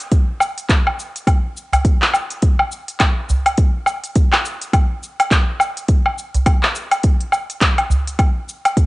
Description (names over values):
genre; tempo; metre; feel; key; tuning
downtempo; 104 BPM; 4/4; swing 59% on 16ths; none; none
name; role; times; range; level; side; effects
deep house drum kit; drums; 0.0-8.9 s; cabasa, handclaps, hi-hat, woodblock; -18 LUFS; equal; studio reverb, cassette tape
electronic kick drum; drums; 0.1-8.9 s; none; -15 LUFS; equal; studio reverb, cassette tape
udu; percussion; 1.7-8.0 s; none; -18 LUFS; right 1 dB; none
room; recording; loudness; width
light reverb, digital ambience; home recording on cassette, nothing above 10.4 kHz; -15 LUFS; side -20 dB against mid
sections
0.0-8.9 A section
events
none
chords
none